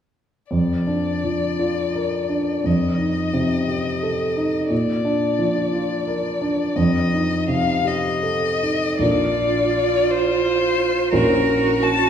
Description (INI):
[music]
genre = classical, slow romantic movement for piano trio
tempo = 50-59 BPM (dotted quarters)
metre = 6/8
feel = rubato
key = Bb major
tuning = A4 = 440 Hz
[part]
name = rich violin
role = melody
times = 0.5-12.1 s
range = Bb4 to A5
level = -23 LUFS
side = left 4 dB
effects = none
[part]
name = warm grand piano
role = accompaniment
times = 0.5-12.1 s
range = Bb1 to Bb4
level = -20 LUFS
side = right 1 dB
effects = none
[part]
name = rich cello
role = second line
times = 9.0-12.1 s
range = F4 to Gb4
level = -21 LUFS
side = right 7 dB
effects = none
[sound]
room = wet recital hall reverb, RT60 1.8 s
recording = heard from further back in the room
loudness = -18 LUFS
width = side -8 dB against mid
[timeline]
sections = 0.5-9.0 A section; 9.0-12.1 B section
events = none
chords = 0.5 Bb/F; 2.7 F9; 4.7 Bb; 6.8 F9; 9.0 Bb; 11.1 Bbdim